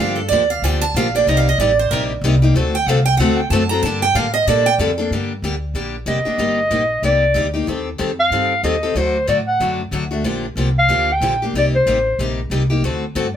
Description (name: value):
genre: acoustic string swing (jazz manouche)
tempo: 187 BPM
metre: 4/4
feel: swing 60% on 8ths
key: G minor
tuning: A4 = 440 Hz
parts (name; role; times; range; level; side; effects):
- picked steel-string acoustic guitar; second line; 0.0-4.7 s; A4 to Bb5; -18 LUFS; right 5 dB; none
- picked steel-string acoustic guitar; accompaniment; 0.0-13.3 s; C3 to A4; -21 LUFS; left 3 dB; none
- upright bass; bass; 0.0-13.4 s; F1 to Bb2; -21 LUFS; equal; none
- mellow clarinet; melody; 6.1-12.3 s; C5 to G5; -17 LUFS; left 1 dB; none
room: light reverb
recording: band playing live in one room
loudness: -15 LUFS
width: side -9 dB against mid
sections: 0.0-5.1 A section; 5.1-13.4 B section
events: steel-string acoustic guitar solo 0.0-5.1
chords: 0.0 Gm7; 1.3 Cm7; 2.5 D7; 3.8 Gmadd9; 5.1 Gm; 6.4 Cm7/G; 7.7 Am7b5; 9.0 D; 10.2 Gm7; 11.5 Cm7; 12.8 D7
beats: 0.31 0.63 0.95 | 1.27 1.59 1.91 2.23 | 2.54 2.87 3.18 3.50 | 3.82 4.14 4.46 4.78 | 5.10 5.42 5.75 6.07 | 6.39 6.71 7.03 7.35 | 7.67 8.00 8.32 8.64 | 8.96 9.28 9.60 9.93 | 10.25 10.57 10.89 11.21 | 11.54 11.86 12.18 12.50 | 12.83 13.15